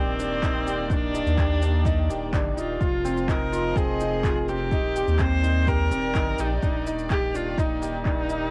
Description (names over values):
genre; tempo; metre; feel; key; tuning
piano and strings electronica; 126 BPM; 4/4; straight; unclear; A4 = 444 Hz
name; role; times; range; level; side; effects
clear viola; melody; 0.0-8.5 s; C4 to C5; -31 LUFS; equal; cassette tape
dark chamber string section; sustained chords; 0.0-8.5 s; Eb3 to Eb5; -36 LUFS; equal; sidechain pumping
felt-muted upright piano; riff; 0.0-8.5 s; C4 to G4; -32 LUFS; equal; none
round analog bass; bass; 0.0-8.5 s; Eb1 to Eb2; -30 LUFS; equal; sidechain pumping
electronic shaker and handclaps; drums; 0.2-8.4 s; none; -39 LUFS; equal; overdrive, cassette tape
electronic kick drum; drums; 0.4-8.1 s; none; -29 LUFS; equal; overdrive, cassette tape
room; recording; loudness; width
light reverb; home recording on cassette; -24 LUFS; mono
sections
0.0-8.5 A section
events
none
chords
0.0 Cm7/Eb; 2.8 F7sus4; 4.7 Cm7/Eb